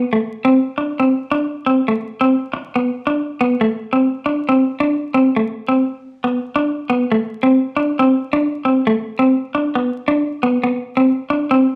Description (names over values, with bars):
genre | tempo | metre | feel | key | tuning
highlife | 137 BPM | 4/4 | straight | unclear | A4 = 440 Hz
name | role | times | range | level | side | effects
clean electric guitar | solo | 0.0-11.7 s | A3 to D4 | -17 LUFS | equal | none
room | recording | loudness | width
wet large studio reverb, RT60 0.8 s | vinyl crackle | -18 LUFS | mono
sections
0.2-11.8 A section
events
none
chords
none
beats
| 0.21 0.65 1.09 1.53 | 1.97 2.40 2.84 3.28 | 3.72 4.16 4.59 5.03 | 5.47 5.91 6.35 6.79 | 7.23 7.67 8.11 8.55 | 8.99 9.43 9.87 10.31 | 10.75 11.19 11.63